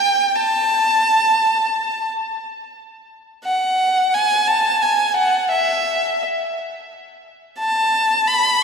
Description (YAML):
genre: rock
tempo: 58 BPM (dotted quarters)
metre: 6/8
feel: straight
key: unclear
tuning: A4 = 444 Hz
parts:
  - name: rich violin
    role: solo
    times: 0.0-8.6 s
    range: E5 to B5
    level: -16 LUFS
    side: equal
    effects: ping-pong delay
room: wet lush hall reverb, RT60 2.7 s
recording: dreamy mix soaked in reverb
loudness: -16 LUFS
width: side -6 dB against mid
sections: 0.0-2.4 A section; 2.4-8.6 B section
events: none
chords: none